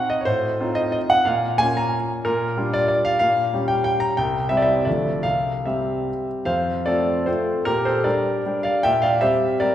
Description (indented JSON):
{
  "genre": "classical, romantic triple-time dance for piano with dotted rhythms",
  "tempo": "138-198 BPM",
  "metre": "3/4",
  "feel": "rubato",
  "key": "F major",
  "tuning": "A4 = 440 Hz",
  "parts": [
    { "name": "bright grand piano", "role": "solo", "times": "0.0-9.7 s", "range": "C2 to Bb5", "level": "-19 LUFS", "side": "equal", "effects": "none" }
  ],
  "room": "wet concert hall reverb, RT60 2.0 s",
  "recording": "heard from further back in the room",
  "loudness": "-19 LUFS",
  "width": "side -11 dB against mid",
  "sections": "0.0-6.5 A section; 6.5-9.7 B section",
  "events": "none",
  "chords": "0.3 F7/A; 1.3 Bbm; 2.3 Gm7/Bb; 3.2 Gm7b5/Bb; 4.2 C; 4.9 Dm; 5.2 C; 6.5 F; 7.7 Gm/Bb; 8.8 C7/Bb"
}